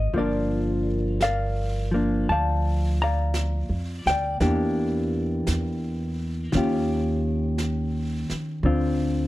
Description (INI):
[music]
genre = jazz ballad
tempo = 56 BPM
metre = 4/4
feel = swing 68% on 8ths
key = unclear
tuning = A4 = 439 Hz
[part]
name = hollow-body jazz guitar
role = accompaniment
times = 0.0-9.3 s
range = D3 to Bb5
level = -25 LUFS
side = left 1 dB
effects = none
[part]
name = upright bass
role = bass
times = 0.0-9.3 s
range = G1 to F2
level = -26 LUFS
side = right 1 dB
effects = none
[part]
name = jazz brush drum kit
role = drums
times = 0.1-9.3 s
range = brushed snare drum, hi-hat, snare drum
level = -38 LUFS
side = right 2 dB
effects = none
[sound]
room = little or no reverb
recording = dark, warm production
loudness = -22 LUFS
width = side -16 dB against mid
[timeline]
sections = 0.0-9.3 A section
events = none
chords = 0.1 Gm7; 4.4 Em7b5; 6.5 Eb9; 8.7 Dm7